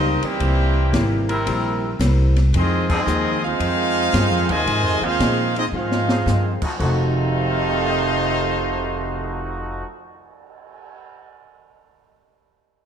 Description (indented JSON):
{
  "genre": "jazz, big band swing",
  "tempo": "112 BPM",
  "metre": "4/4",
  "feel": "swing 67% on 8ths",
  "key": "unclear",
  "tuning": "A4 = 441 Hz",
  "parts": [
    { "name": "bright trumpet section", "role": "melody", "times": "0.0-9.8 s", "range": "Bb3 to Ab5", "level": "-22 LUFS", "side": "equal", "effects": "none" },
    { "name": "warm trombone section", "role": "second line", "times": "0.0-9.8 s", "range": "F2 to F4", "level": "-25 LUFS", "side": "right 4 dB", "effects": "none" },
    { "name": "archtop guitar, miked and amplified", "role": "accompaniment", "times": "0.0-10.4 s", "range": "F2 to Gb4", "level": "-28 LUFS", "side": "left 2 dB", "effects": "none" },
    { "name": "upright bass", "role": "bass", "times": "0.0-9.8 s", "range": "F1 to Bb2", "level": "-21 LUFS", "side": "equal", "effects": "none" },
    { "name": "open jazz drum kit", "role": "drums", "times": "0.2-11.0 s", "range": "crash cymbal, cymbal swell, hi-hat, kick drum, ride cymbal, snare drum", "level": "-28 LUFS", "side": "equal", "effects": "none" },
    { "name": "clear trombone section", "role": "sustained chords", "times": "1.3-9.9 s", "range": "F3 to Bb4", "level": "-30 LUFS", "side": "left 1 dB", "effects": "none" }
  ],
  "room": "light reverb",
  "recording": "none",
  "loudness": "-17 LUFS",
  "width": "side -8 dB against mid",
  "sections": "0.0-6.8 A section; 6.8-11.1 B section",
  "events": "band accent 2.8; drum fill 5.7-6.3",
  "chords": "0.4 C7; 2.5 Fm7; 6.8 F7b9"
}